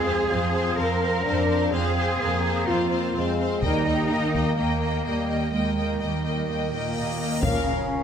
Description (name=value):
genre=cinematic, epic orchestral film score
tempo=126 BPM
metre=4/4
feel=straight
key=unclear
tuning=A4 = 439 Hz
part: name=warm symphonic violin section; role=melody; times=0.0-7.8 s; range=F5 to G5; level=-34 LUFS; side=left 4 dB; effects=none
part: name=clear symphonic violin section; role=second line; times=0.0-7.7 s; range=C5 to F5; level=-33 LUFS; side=left 2 dB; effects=none
part: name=rich symphonic viola section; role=accompaniment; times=0.0-7.8 s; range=Bb3 to Bb4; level=-30 LUFS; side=right 1 dB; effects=none
part: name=warm French horn section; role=sustained chords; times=0.0-8.0 s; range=Eb3 to D4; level=-29 LUFS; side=left 5 dB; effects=none
part: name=rich symphonic cello section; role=bass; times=0.0-8.0 s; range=Bb2 to Bb4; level=-27 LUFS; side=right 1 dB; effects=none
part: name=warm symphonic double bass section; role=bass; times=0.0-7.8 s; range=Bb1 to F2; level=-28 LUFS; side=right 3 dB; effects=none
part: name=taiko ensemble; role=drums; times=3.6-4.6, 7.4-7.9 s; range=none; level=-30 LUFS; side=left 1 dB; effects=none
part: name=cymbal swell and impact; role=sound effects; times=6.7-8.0 s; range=none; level=-35 LUFS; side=left 1 dB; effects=none
part: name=clear woodwind section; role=sustained chords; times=7.4-8.0 s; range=Bb3 to F5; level=-33 LUFS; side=left 1 dB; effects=none
part: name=bright trombone section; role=sustained chords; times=7.5-7.6 s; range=F3 to Bb3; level=-34 LUFS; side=right 2 dB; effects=none
room=moderate scoring stage reverb, RT60 1.5 s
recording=none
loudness=-22 LUFS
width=side -8 dB against mid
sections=0.0-7.4 A section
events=cymbal swell 6.7-7.4; impact 7.4-8.0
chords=0.0 Fm; 3.6 Eb; 7.4 Bbm